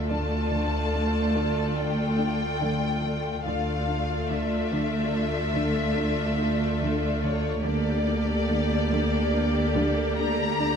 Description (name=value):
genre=cinematic, suspense film score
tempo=72 BPM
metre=5/4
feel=straight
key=D minor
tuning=A4 = 444 Hz
part: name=rich studio violin section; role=melody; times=0.0-10.8 s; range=C#5 to Bb5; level=-32 LUFS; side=left 4 dB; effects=none
part: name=rich symphonic violin section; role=second line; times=0.0-10.8 s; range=A4 to D5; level=-32 LUFS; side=left 2 dB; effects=none
part: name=clear symphonic viola section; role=accompaniment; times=0.0-10.8 s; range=A3 to G4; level=-30 LUFS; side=equal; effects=none
part: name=clear symphonic double bass section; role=bass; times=0.0-10.8 s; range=D2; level=-30 LUFS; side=right 1 dB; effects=none
part: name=rich symphonic cello section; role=bass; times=0.0-10.8 s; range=D2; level=-30 LUFS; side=right 2 dB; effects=none
part: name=rich symphonic cello section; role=riff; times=0.1-10.8 s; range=D3 to D4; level=-33 LUFS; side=right 1 dB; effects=none
part: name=felt-muted upright piano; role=texture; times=0.1-7.7 s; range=D4 to D5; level=-41 LUFS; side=left 1 dB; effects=none
room=light reverb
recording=none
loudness=-23 LUFS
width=side -7 dB against mid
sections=0.0-10.8 A section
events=none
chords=0.0 Dmadd9; 7.6 Gmadd9/D